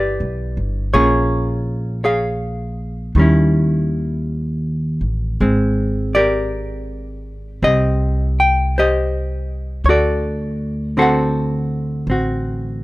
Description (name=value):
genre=jazz ballad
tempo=54 BPM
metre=4/4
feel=swing 67% on 8ths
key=unclear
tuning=A4 = 440 Hz
part: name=hollow-body jazz guitar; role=accompaniment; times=0.0-12.8 s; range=D3 to G5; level=-18 LUFS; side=equal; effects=none
part: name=upright bass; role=bass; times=0.0-12.8 s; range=G1 to Eb2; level=-20 LUFS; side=equal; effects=none
room=little or no reverb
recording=close, detailed microphones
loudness=-16 LUFS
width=side -19 dB against mid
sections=0.0-12.8 A section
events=none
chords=0.0 Cmaj9 (rootless); 0.9 Bbm7; 3.2 Eb7b9; 5.4 Abmaj9; 9.9 D7